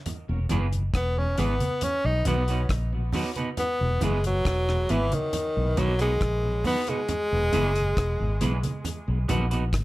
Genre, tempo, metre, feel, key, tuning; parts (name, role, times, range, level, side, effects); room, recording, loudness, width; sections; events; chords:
roots reggae; 68 BPM; 4/4; straight; A4 = 441 Hz
deep reggae drum kit; drums; 0.1-9.8 s; hi-hat, kick drum, rim click; -31 LUFS; equal
congas; percussion; 0.1-9.8 s; -33 LUFS; right 2 dB
mellow tonewheel organ; accompaniment; 0.3-9.6 s; E2 to B3; -35 LUFS; left 2 dB; slow rotary speaker, dub echo
vintage muted fingered electric bass; bass; 0.3-9.8 s; E1 to B1; -26 LUFS; equal
electric guitar through a small old amp; accompaniment; 0.5-9.6 s; B3 to B4; -33 LUFS; right 4 dB; dub echo, plate reverb
clear tenor saxophone; melody; 1.0-9.1 s; D#3 to D#4; -27 LUFS; equal; dub echo
light reverb; -23 LUFS; side -18 dB against mid
0.1-9.8 A section
tenor saxophone solo 0.1-9.8
0.1 E; 1.8 B; 3.6 E; 5.3 B; 7.1 E; 8.9 B